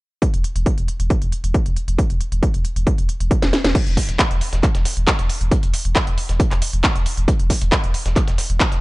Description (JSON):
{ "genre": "driving peak-time techno", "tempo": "136 BPM", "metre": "4/4", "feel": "straight", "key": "unclear", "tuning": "A4 = 441 Hz", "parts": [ { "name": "electronic kick drum", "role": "drums", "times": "0.2-8.7 s", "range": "none", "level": "-18 LUFS", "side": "equal", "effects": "none" }, { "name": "techno drum kit", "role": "drums", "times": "0.2-8.8 s", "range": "crash cymbal, handclaps, hi-hat, snare drum", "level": "-22 LUFS", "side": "equal", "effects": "sidechain pumping on hats, sidechain pumping on cymbals" }, { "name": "saturated sub bass", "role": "bass", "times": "0.3-8.8 s", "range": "E1", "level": "-21 LUFS", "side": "equal", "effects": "sidechain pumping, low-pass filter" }, { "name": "dusty soul sampler-style drum kit", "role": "drums", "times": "3.7-8.8 s", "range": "hi-hat, snare drum", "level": "-32 LUFS", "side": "equal", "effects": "high-pass filter on hats, high-pass filter on snare, high-pass filter on room" } ], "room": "little or no reverb", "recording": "nothing above 10.8 kHz", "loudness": "-16 LUFS", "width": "side -22 dB against mid", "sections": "0.2-3.8 A section; 3.8-8.8 B section", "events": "drum fill 3.4-3.8", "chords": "none" }